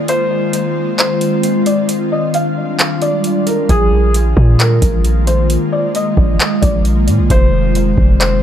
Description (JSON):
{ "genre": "hip hop, atmospheric cloud-rap", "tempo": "133 BPM", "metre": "4/4", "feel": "half-time", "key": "unclear", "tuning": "A4 = 436 Hz", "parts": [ { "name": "ethereal airy pad", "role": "sustained chords", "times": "0.0-8.4 s", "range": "Eb3 to F4", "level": "-17 LUFS", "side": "left 1 dB", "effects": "ensemble chorus, built-in reverb, sidechain pumping" }, { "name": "felt-muted upright piano", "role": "melody", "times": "0.1-8.4 s", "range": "Ab4 to F5", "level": "-19 LUFS", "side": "equal", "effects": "low-pass filter, tape echo" }, { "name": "booming analog drum machine", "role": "drums", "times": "0.1-8.3 s", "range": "handclaps, hi-hat, kick drum", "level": "-14 LUFS", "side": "equal", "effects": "none" }, { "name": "warm 808-style bass", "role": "bass", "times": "3.7-8.4 s", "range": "F1 to Bb2", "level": "-13 LUFS", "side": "equal", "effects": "none" } ], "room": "digital ambience", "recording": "echo-heavy mix", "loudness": "-11 LUFS", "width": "side -10 dB against mid", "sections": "0.0-8.4 A section", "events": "break 0.0-3.7", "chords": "0.1 Fm7; 1.9 Ebmaj9; 3.7 Bb7sus4; 7.3 Fm7" }